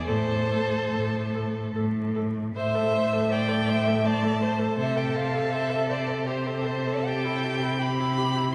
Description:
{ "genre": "classical, slow romantic movement for string quartet", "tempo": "69-86 BPM", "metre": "3/4", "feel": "rubato", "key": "A minor", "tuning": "A4 = 440 Hz", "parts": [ { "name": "rich violin", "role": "melody", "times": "0.0-8.5 s", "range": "C5 to B5", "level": "-32 LUFS", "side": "equal", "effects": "none" }, { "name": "rich violin", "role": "second line", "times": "0.0-8.5 s", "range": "E4 to E5", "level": "-34 LUFS", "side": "equal", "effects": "none" }, { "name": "rich viola", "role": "accompaniment", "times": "0.1-8.5 s", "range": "E4 to C5", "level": "-35 LUFS", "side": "equal", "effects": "none" }, { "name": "clear cello", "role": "bass", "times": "0.1-8.5 s", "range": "A2 to C3", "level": "-29 LUFS", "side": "equal", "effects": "none" } ], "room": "wet concert hall reverb, RT60 2.3 s", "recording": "recorded in a church or concert hall, vinyl crackle, lossy compression artefacts", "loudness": "-26 LUFS", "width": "mono", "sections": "0.0-2.6 A section; 2.6-8.5 B section", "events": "none", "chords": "0.1 Am; 4.8 Am/C; 7.1 C", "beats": "| 0.06 0.92 1.75 | 2.56 3.32 4.06 | 4.79 5.53 6.27 | 7.06 7.81 8.52" }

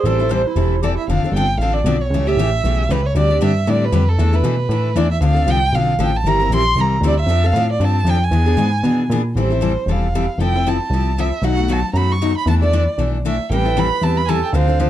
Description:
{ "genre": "acoustic string swing (jazz manouche)", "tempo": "232 BPM", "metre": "4/4", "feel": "swing 55% on 8ths", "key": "A minor", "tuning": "A4 = 442 Hz", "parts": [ { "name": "warm violin", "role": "melody", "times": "0.0-14.9 s", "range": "A4 to C#6", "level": "-21 LUFS", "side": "right 2 dB", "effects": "plate reverb" }, { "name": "growling clarinet", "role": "second line", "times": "0.0-1.1, 13.5-14.9 s", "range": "E4 to C5", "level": "-22 LUFS", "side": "right 6 dB", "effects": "none" }, { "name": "plucky analog bass", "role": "bass", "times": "0.0-14.9 s", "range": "E1 to B2", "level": "-17 LUFS", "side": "equal", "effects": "none" }, { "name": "picked steel-string acoustic guitar", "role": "accompaniment", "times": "0.1-14.9 s", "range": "B2 to Bb4", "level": "-21 LUFS", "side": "left 4 dB", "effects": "none" } ], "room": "light reverb", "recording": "dark, warm production", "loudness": "-15 LUFS", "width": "side -12 dB against mid", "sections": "0.0-1.1 A section; 1.1-9.4 B section; 9.4-14.9 A section", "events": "none", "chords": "0.1 Am7; 1.1 Dm7; 2.1 A7; 3.2 D7sus4; 4.2 E7sus4; 5.2 Dm7; 6.3 C7; 7.3 F6; 8.3 E7; 9.4 Am7; 10.4 Fmaj7; 11.4 B7; 12.5 E7sus4; 13.5 Am7", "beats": "| 0.05 0.31 0.57 0.83 | 1.09 1.34 1.60 1.86 | 2.12 2.38 2.64 2.89 | 3.15 3.41 3.67 3.93 | 4.19 4.45 4.70 4.96 | 5.22 5.48 5.74 6.00 | 6.25 6.51 6.77 7.03 | 7.29 7.55 7.81 8.07 | 8.32 8.58 8.84 9.10 | 9.36 9.62 9.88 10.14 | 10.40 10.66 10.91 11.17 | 11.43 11.69 11.95 12.21 | 12.47 12.73 12.99 13.25 | 13.51 13.76 14.02 14.28 | 14.54 14.80" }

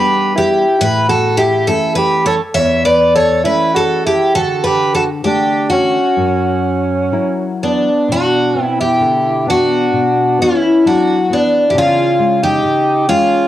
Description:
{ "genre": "fado-style ballad", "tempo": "66 BPM", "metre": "4/4", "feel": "uneven beats, rubato", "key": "unclear", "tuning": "A4 = 440 Hz", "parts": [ { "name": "picked twelve-string acoustic guitar", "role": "melody", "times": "0.0-13.5 s", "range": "D4 to E5", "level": "-13 LUFS", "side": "left 1 dB", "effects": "cassette tape" }, { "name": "breathy alto saxophone", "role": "second line", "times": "0.0-13.5 s", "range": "B3 to C#5", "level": "-18 LUFS", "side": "right 5 dB", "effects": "cassette tape" }, { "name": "nylon-string guitar", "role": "accompaniment", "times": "0.0-13.5 s", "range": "E2 to F#5", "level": "-20 LUFS", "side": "left 4 dB", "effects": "cassette tape" } ], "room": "moderate spring reverb, RT60 1.4 s, small room reverb", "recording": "home recording on cassette", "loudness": "-11 LUFS", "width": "side -13 dB against mid", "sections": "0.0-8.1 A section; 8.1-13.5 B section", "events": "none", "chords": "0.0 G; 0.8 A; 4.4 D; 6.2 F#7; 8.1 Bm; 11.8 C#", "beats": "| 0.81 1.69 2.57 3.46 | 4.36 5.25 6.17 7.12 | 8.08 9.01 9.93 10.85 | 11.76 12.64" }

